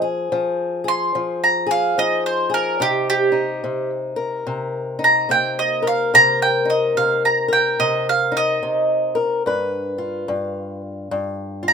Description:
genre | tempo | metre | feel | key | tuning
acoustic country blues, solo or duo | 72 BPM | 4/4 | swing 62% on 8ths | C minor | A4 = 441 Hz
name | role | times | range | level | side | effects
mandolin | melody | 0.0-11.7 s | G4 to C6 | -17 LUFS | right 2 dB | none
fingerpicked old ladder-braced acoustic guitar | accompaniment | 0.0-11.7 s | G2 to B4 | -22 LUFS | left 3 dB | none
room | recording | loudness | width
light reverb | minimal, uncompressed stereo recording | -17 LUFS | side -6 dB against mid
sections
0.0-11.7 A section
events
mandolin solo 0.0-11.7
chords
0.0 Fm7; 2.8 Cm7; 9.4 G7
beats
0.32 1.15 1.98 | 2.81 3.64 4.47 5.30 | 6.13 6.96 7.79 8.62 | 9.45 10.28 11.11

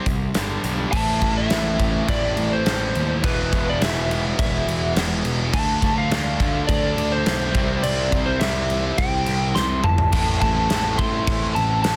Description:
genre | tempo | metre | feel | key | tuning
hard rock | 104 BPM | 4/4 | straight | A minor | A4 = 440 Hz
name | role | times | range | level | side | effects
overdriven semi-hollow guitar | riff | 0.0-12.0 s | E2 to D4 | -32 LUFS | equal | none
scooped high-gain guitar | riff | 0.0-12.0 s | E2 to D4 | -31 LUFS | equal | distortion
fuzz picked electric bass | bass | 0.1-12.0 s | E1 to D#2 | -27 LUFS | equal | overdrive
huge arena drum kit | drums | 0.1-12.0 s | crash cymbal, hi-hat, kick drum, snare drum, toms | -26 LUFS | equal | none
lightly driven lead guitar | melody | 0.9-12.0 s | B4 to C6 | -27 LUFS | equal | none
biting overdriven guitar | riff | 0.9-12.0 s | A2 to F4 | -34 LUFS | equal | none
room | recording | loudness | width
light reverb | dense, heavily limited modern master | -21 LUFS | mono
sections
0.9-12.0 A section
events
drum fill 9.6-10.1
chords
0.4 G5; 0.9 Am; 3.2 E; 5.5 Dm; 7.5 C; 10.1 Am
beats
0.36 | 0.93 1.51 2.09 2.66 | 3.24 3.81 4.39 4.96 | 5.54 6.11 6.69 7.26 | 7.84 8.41 8.98 9.56 | 10.13 10.71 11.28 11.85

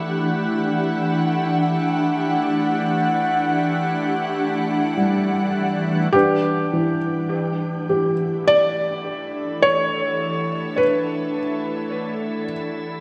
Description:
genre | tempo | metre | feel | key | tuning
ambient | 52 BPM | 3/4 | straight | unclear | A4 = 441 Hz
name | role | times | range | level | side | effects
ethereal airy pad | sustained chords | 0.0-13.0 s | E3 to F#5 | -25 LUFS | equal | ensemble chorus, built-in reverb, phaser, shimmer reverb
felt-muted upright piano | arpeggios | 0.0-13.0 s | E3 to B4 | -26 LUFS | equal | tape echo
organ-like drone | drone | 0.0-13.0 s | A3 to E4 | -32 LUFS | equal | ensemble chorus, built-in reverb
felt-muted upright piano | melody | 6.1-12.4 s | G4 to D5 | -23 LUFS | equal | shimmer reverb, tape echo
room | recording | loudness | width
wet plate reverb, RT60 2.8 s | echo-heavy mix | -21 LUFS | mono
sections
0.0-6.1 A section; 6.1-13.0 B section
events
fade-in on ambient pad 6.1-13.0; fade-in on synth drone 6.1-13.0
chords
0.0 Em11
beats
0.36 1.50 | 2.65 3.80 4.97 | 6.14 7.31 8.46 | 9.61 10.75 11.89

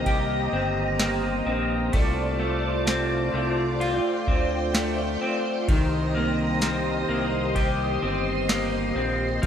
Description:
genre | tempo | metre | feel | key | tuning
dream pop | 64 BPM | 4/4 | straight | C dorian | A4 = 441 Hz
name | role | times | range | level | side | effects
ensemble organ-string | sustained chords | 0.0-9.5 s | F4 to C6 | -27 LUFS | right 1 dB | phaser, ensemble chorus
electric guitar at the edge of break-up | arpeggios | 0.0-9.5 s | Eb3 to G4 | -26 LUFS | left 1 dB | lush chorus, tape echo
fat analog bass | bass | 0.0-9.5 s | G1 to D2 | -29 LUFS | equal | none
booming analog drum machine | drums | 0.1-9.5 s | kick drum, ride cymbal, snare drum, tambourine | -25 LUFS | equal | none
room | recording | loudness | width
light reverb, digital ambience | none | -22 LUFS | side -8 dB against mid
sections
0.0-9.5 A section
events
none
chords
0.0 Cm7; 1.9 Dm7/C; 5.7 Cm7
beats
0.06 0.99 | 1.93 2.87 3.81 4.74 | 5.68 6.62 7.56 8.49 | 9.43

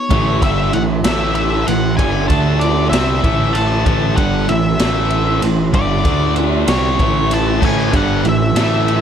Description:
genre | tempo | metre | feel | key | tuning
quiet-loud alternative rock | 64 BPM (dotted quarters) | 6/8 | straight | unclear | A4 = 438 Hz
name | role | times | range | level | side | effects
octave-fuzz lead guitar | melody | 0.0-9.0 s | C#5 to A5 | -21 LUFS | left 1 dB | distortion
overdriven electric guitar | riff | 0.1-9.0 s | G2 to D4 | -21 LUFS | left 12 dB | none
thick fuzz guitar | riff | 0.1-9.0 s | G2 to D4 | -20 LUFS | right 14 dB | distortion
growling picked electric bass | bass | 0.1-9.0 s | G1 to D2 | -20 LUFS | equal | overdrive
raw garage drum kit | drums | 0.1-9.0 s | crash cymbal, kick drum, ride cymbal, snare drum | -18 LUFS | equal | none
cranked stack guitar | riff | 7.6-9.0 s | G2 to A3 | -22 LUFS | right 2 dB | overdrive
room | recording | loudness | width
small room ambience | none | -13 LUFS | side -8 dB against mid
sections
0.1-9.0 A section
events
none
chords
0.1 A5; 2.3 D5; 2.9 A5; 6.1 D5; 6.7 A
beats
| 0.10 1.04 | 1.99 2.92 | 3.87 4.80 | 5.74 6.68 | 7.62 8.56

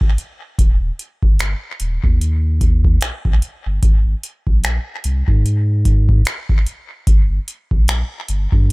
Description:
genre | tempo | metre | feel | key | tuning
contemporary R&B | 74 BPM | 4/4 | swing 58% on 16ths | Eb major | A4 = 441 Hz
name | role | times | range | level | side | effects
booming analog drum machine | drums | 0.0-8.7 s | finger snaps, hi-hat, kick drum | -15 LUFS | equal | overdrive
warm sub bass | bass | 0.6-8.7 s | Eb1 to Ab2 | -17 LUFS | equal | none
room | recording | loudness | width
little or no reverb | echo-heavy mix | -15 LUFS | side -26 dB against mid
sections
0.0-8.7 A section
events
none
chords
none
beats
| 0.58 1.40 2.21 3.02 | 3.83 4.64 5.45 6.26 | 7.07 7.88 8.69

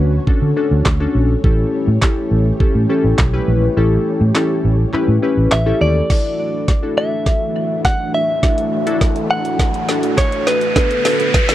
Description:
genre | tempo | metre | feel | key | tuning
dance-pop | 103 BPM | 4/4 | straight | D major | A4 = 439 Hz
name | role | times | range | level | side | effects
glassy digital keys | accompaniment | 0.0-11.5 s | D3 to B4 | -20 LUFS | left 2 dB | chorus, sidechain pumping
string machine, cellos | sustained chords | 0.0-11.5 s | D3 to C#5 | -24 LUFS | equal | ensemble chorus, sidechain pumping
vintage muted fingered electric bass | bass | 0.0-6.0 s | A1 to D3 | -15 LUFS | equal | sidechain pumping
smooth R&B drum kit | drums | 0.3-11.5 s | crash cymbal, handclaps, hi-hat, kick drum, snare drum | -16 LUFS | equal | none
direct-recorded clean electric guitar | melody | 5.5-11.5 s | B4 to F#5 | -19 LUFS | equal | tape echo
riser | sound effects | 7.8-11.5 s | none | -25 LUFS | equal | none
direct-recorded clean electric guitar | riff | 10.8-11.5 s | D4 to B4 | -21 LUFS | right 8 dB | analog chorus
room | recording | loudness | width
little or no reverb | dry, close 1970s-style studio recording | -14 LUFS | side -13 dB against mid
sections
0.0-6.1 A section; 6.1-11.5 B section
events
kick muted 3.8-6.1; build-up 6.1-11.5; drum fill 6.1-11.5; riser 7.8-11.5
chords
0.0 Dmaj7; 1.4 A7; 6.1 Dadd9; 10.8 Bm7/D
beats
0.28 0.86 | 1.44 2.02 2.60 3.19 | 3.77 4.35 4.93 5.52 | 6.10 6.68 7.26 7.85 | 8.43 9.01 9.60 10.18 | 10.76 11.34

